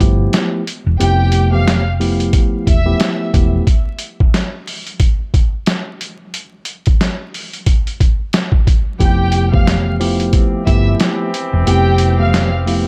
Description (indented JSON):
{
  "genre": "hip hop, boom-bap hip-hop",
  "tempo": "90 BPM",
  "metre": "4/4",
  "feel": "swing 57% on 16ths",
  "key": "unclear",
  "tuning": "A4 = 441 Hz",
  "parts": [
    { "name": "mellow tine electric piano", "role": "accompaniment", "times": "0.0-3.6, 9.0-12.9 s", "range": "E3 to G4", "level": "-21 LUFS", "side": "equal", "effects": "high-pass filter, low-pass filter" },
    { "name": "hollow-body short-scale fingered electric bass", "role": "bass", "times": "0.0-3.6, 9.0-12.9 s", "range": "E1 to G1", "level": "-17 LUFS", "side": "equal", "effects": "none" },
    { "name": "boom bap sampler-style drum kit", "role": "drums", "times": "0.0-12.8 s", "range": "hi-hat, kick drum, snare drum", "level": "-17 LUFS", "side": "equal", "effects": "none" },
    { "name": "warm studio violin section", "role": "melody", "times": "1.0-3.2, 9.0-12.5 s", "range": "G4 to F6", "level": "-24 LUFS", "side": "equal", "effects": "high-pass filter, low-pass filter, analog delay" },
    { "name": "warm horn section", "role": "stabs", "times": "10.3-12.9 s", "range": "E3 to G4", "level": "-26 LUFS", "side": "equal", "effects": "high-pass filter, low-pass filter" }
  ],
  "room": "little or no reverb",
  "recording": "vinyl crackle",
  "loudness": "-15 LUFS",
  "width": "mono",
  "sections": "0.0-12.9 A section",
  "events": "break 0.0-1.0, 3.7-9.0",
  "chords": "0.0 Fmaj9#11; 3.7 N.C.; 9.0 Fmaj9#11"
}